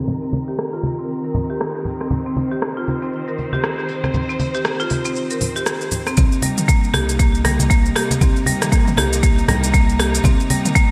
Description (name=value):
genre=afro house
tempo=118 BPM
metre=4/4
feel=swing 59% on 16ths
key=C minor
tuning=A4 = 440 Hz
part: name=clear symphonic string section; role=sustained chords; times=0.0-10.9 s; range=C3 to C5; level=-30 LUFS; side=equal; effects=sidechain pumping
part: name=marimba with hard mallets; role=arpeggios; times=0.0-10.8 s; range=G3 to Bb4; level=-25 LUFS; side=equal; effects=sidechain pumping, low-pass filter, delay
part: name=deep house drum kit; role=drums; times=0.1-10.9 s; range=hi-hat, rim click, shaker, toms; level=-26 LUFS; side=equal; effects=gated reverb
part: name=congas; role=percussion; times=0.1-10.6 s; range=none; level=-26 LUFS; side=equal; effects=none
part: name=round analog bass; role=bass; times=6.2-10.4 s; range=C2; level=-24 LUFS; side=equal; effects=sidechain pumping
part: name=electronic kick drum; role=drums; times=6.2-10.9 s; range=none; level=-18 LUFS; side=equal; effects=none
room=light reverb, small room ambience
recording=bright 1980s-style digital production, low-pass filter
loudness=-19 LUFS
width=mono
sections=0.0-6.2 A section; 6.2-10.9 B section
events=filter sweep on marimba 0.0-6.2; filter sweep 0.0-6.2; drop 6.2-10.9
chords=0.0 Cm7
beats=| 0.08 0.58 1.09 1.60 | 2.11 2.62 3.13 3.64 | 4.14 4.65 5.16 5.67 | 6.18 6.69 7.20 7.70 | 8.21 8.72 9.23 9.74 | 10.25 10.75